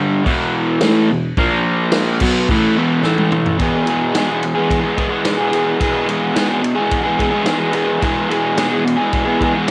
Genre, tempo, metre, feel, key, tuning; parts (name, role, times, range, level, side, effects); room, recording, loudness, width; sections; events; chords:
garage rock duo or trio; 108 BPM; 4/4; straight; E major; A4 = 437 Hz
crunchy overdriven guitar; riff; 0.0-9.7 s; E2 to G#4; -17 LUFS; equal; cassette tape
vintage drum kit; drums; 0.3-9.7 s; crash cymbal, kick drum, ride cymbal, snare drum, toms; -24 LUFS; equal; cassette tape
small room ambience; home recording on cassette; -17 LUFS; mono
0.0-3.6 A section; 3.6-9.7 B section
drum fill 3.0-3.6
0.3 E5; 1.4 A#5; 2.2 E5; 3.0 A5; 3.6 E